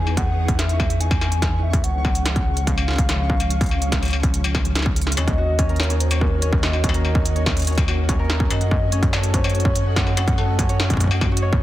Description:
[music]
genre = IDM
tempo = 144 BPM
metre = 4/4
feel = straight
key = unclear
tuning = A4 = 442 Hz
[part]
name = warbly nostalgic lead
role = melody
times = 0.0-11.2 s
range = Bb4 to G#5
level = -29 LUFS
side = left 1 dB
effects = chorus, digital delay
[part]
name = soft string machine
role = sustained chords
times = 0.0-11.6 s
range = Db3 to G#4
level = -30 LUFS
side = equal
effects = ensemble chorus
[part]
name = warm sub bass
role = bass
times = 0.0-11.6 s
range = Db2 to Gb2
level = -21 LUFS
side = equal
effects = none
[part]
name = pulsing gated texture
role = texture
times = 0.0-11.6 s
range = Db4 to Db6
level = -36 LUFS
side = left 4 dB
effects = chorus, built-in reverb, sidechain pumping
[part]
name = industrial drum kit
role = drums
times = 0.1-11.5 s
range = hi-hat, shaker, snare drum, struck metal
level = -25 LUFS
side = left 1 dB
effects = none
[part]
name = electronic kick drum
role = drums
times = 0.2-11.6 s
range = none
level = -22 LUFS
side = equal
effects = distortion
[part]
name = concert harp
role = arpeggios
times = 5.2-11.6 s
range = Db4 to Gb5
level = -29 LUFS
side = right 2 dB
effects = tape echo
[sound]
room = digital ambience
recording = dense, heavily limited modern master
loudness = -17 LUFS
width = side -14 dB against mid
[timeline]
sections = 0.0-5.2 A section; 5.2-11.6 B section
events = drum fill 5.0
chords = 0.0 Emaj7; 1.8 Db; 5.2 Ebm7; 8.5 Gbm

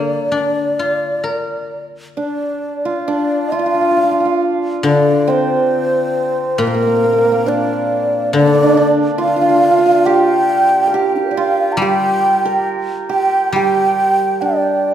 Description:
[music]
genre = chinese traditional, Chinese chamber ensemble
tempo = 68 BPM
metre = 4/4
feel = rubato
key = D jue mode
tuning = A4 = 436 Hz
[part]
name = mellow low xiao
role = melody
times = 0.0-14.9 s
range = D4 to Bb5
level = -16 LUFS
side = equal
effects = none
[part]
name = guzheng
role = accompaniment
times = 0.0-14.9 s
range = Bb2 to Bb4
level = -20 LUFS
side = left 4 dB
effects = none
[part]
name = hammered dulcimer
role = second line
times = 2.2-14.9 s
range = Bb3 to Bb4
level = -16 LUFS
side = right 4 dB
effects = none
[sound]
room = moderate concert hall reverb, RT60 2.3 s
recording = recorded in a church or concert hall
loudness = -13 LUFS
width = side -10 dB against mid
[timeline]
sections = 0.0-3.1 A section; 3.1-14.9 B section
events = none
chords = none

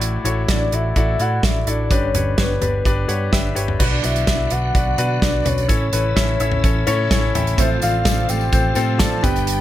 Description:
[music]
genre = piano-driven pop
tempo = 127 BPM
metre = 4/4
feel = straight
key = unclear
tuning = A4 = 441 Hz
[part]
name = clear concert grand piano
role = accompaniment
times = 0.0-9.6 s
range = G2 to G5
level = -23 LUFS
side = left 3 dB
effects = none
[part]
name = picked electric bass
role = bass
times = 0.0-9.6 s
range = G1 to B2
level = -22 LUFS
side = equal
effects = none
[part]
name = natural country drum kit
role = drums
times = 0.0-9.6 s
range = crash cymbal, hi-hat, kick drum, snare drum, toms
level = -20 LUFS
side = right 1 dB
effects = none
[part]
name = soft octave-layered synth lead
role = melody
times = 0.5-9.6 s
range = B4 to A5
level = -24 LUFS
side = left 1 dB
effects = chorus, tremolo
[part]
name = tonewheel organ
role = sustained chords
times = 3.8-9.6 s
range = C3 to G4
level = -31 LUFS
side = right 1 dB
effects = chorus vibrato, fast rotary speaker
[part]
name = fingerpicked steel-string acoustic guitar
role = riff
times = 7.6-9.6 s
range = G2 to G4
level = -26 LUFS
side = right 9 dB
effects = none
[part]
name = tambourine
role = percussion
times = 7.6-9.6 s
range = none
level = -34 LUFS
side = left 10 dB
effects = none
[sound]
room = light reverb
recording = none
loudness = -16 LUFS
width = side -13 dB against mid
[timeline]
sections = 0.0-3.8 A section; 3.8-9.6 B section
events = grand piano fill 2.9-3.8, 6.6-7.6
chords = 0.0 Dadd9/A; 1.9 G; 3.8 Bm; 5.7 A; 7.6 F/A

